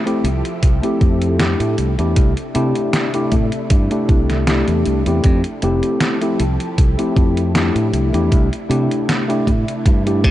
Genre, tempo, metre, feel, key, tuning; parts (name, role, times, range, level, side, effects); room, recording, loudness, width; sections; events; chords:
vaporwave; 78 BPM; 4/4; swing 54% on 16ths; C major; A4 = 439 Hz
soft string machine; sustained chords; 0.0-10.3 s; C3 to A4; -26 LUFS; equal; ensemble chorus
mellow tine electric piano; accompaniment; 0.1-10.3 s; A3 to G4; -19 LUFS; left 1 dB; lush chorus, tape echo
detuned 8-bit digital drum machine; drums; 0.1-10.3 s; hi-hat, snare drum; -23 LUFS; equal; gated reverb
modern bright fingered electric bass; bass; 0.2-10.3 s; F1 to C3; -18 LUFS; equal
electronic kick drum; drums; 0.6-10.3 s; -14 LUFS; equal
little or no reverb; cassette tape, nothing above 10.5 kHz; -14 LUFS; side -14 dB against mid
0.0-10.3 A section
0.0 Fmaj9; 1.8 C69; 5.2 Fmaj9; 7.9 C69